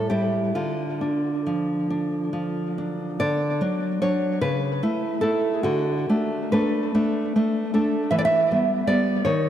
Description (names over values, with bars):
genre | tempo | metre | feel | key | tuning
romantic piece for solo classical guitar | 43-54 BPM (dotted quarters) | 6/8 | rubato | D minor, D major from 3.2 s | A4 = 441 Hz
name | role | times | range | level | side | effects
nylon-string guitar | solo | 0.0-9.5 s | A2 to E5 | -21 LUFS | equal | tape echo
room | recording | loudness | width
wet lush hall reverb, RT60 2.1 s | dreamy mix soaked in reverb | -21 LUFS | side -10 dB against mid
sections
0.0-3.2 A section; 3.2-9.5 B section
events
none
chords
0.0 A7(no3); 0.5 Dm; 3.2 D; 4.4 A/C#; 5.6 D; 8.1 Em